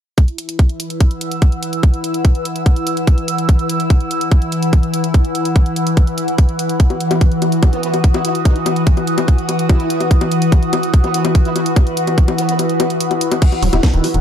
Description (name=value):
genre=psychedelic trance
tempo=145 BPM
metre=4/4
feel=straight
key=unclear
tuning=A4 = 440 Hz
part: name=evolving wavetable pad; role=sustained chords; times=0.5-14.2 s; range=E3 to F#4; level=-20 LUFS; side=left 1 dB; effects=chorus, built-in reverb, sidechain pumping
part: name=electronic kick drum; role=drums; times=0.2-13.9 s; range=none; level=-11 LUFS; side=equal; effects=none
part: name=garage drum kit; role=drums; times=0.2-14.2 s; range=bongos, crash cymbal, hi-hat, snare drum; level=-23 LUFS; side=left 4 dB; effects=none
part: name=airy breathy pad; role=texture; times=0.3-14.2 s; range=E4 to E6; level=-22 LUFS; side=equal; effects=chorus, phaser, sidechain pumping
part: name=formant-sweep wobble bass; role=second line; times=7.7-12.6 s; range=B3 to E4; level=-29 LUFS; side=right 4 dB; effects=ensemble chorus, sidechain pumping, high-pass filter, ping-pong delay
part: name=liquid acid bass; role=riff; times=13.4-14.2 s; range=D#3 to E4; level=-21 LUFS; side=left 1 dB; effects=phaser, auto-pan, sidechain pumping, dub echo
part: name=tight sequencer bass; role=bass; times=13.6-14.2 s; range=E1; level=-15 LUFS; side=equal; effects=none
room=light reverb, digital ambience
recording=dark, warm production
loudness=-13 LUFS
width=side -9 dB against mid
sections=0.2-13.4 A section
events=break 12.6-13.4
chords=0.2 E5